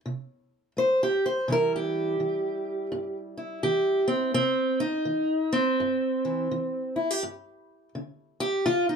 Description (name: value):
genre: acoustic country blues, solo or duo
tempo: 84 BPM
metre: 4/4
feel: swing 63% on 8ths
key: C major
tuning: A4 = 439 Hz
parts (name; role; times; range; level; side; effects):
- fingerpicked steel-string acoustic guitar; solo; 0.1-9.0 s; G2 to C5; -24 LUFS; equal; none
room: moderate studio reverb, RT60 0.5 s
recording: none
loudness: -24 LUFS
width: side -6 dB against mid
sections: 0.0-9.0 A section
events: steel-string acoustic guitar solo 0.0-9.0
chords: 0.0 F (rootless); 1.5 C; 7.2 G5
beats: 0.04 0.76 | 1.48 2.19 2.91 3.63 | 4.34 5.06 5.78 6.49 | 7.21 7.93 8.65